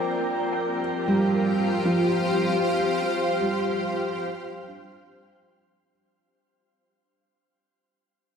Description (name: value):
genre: ambient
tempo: free time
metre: none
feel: none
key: unclear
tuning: A4 = 439 Hz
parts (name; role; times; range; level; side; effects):
- granular cloud pad; sustained chords; 0.0-5.9 s; F4 to F5; -26 LUFS; left 1 dB; built-in reverb
- felt-muted upright piano; arpeggios; 0.0-6.1 s; F3 to G5; -26 LUFS; right 2 dB; tape echo
- organ-like drone; drone; 0.0-6.0 s; F3 to C4; -32 LUFS; left 2 dB; ensemble chorus, built-in reverb
room: wet shimmer reverb, RT60 6.9 s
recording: none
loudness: -22 LUFS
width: side -6 dB against mid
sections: 0.0-5.9 A section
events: fade-out 1.7-5.9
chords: 0.0 F5; 2.8 C5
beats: free time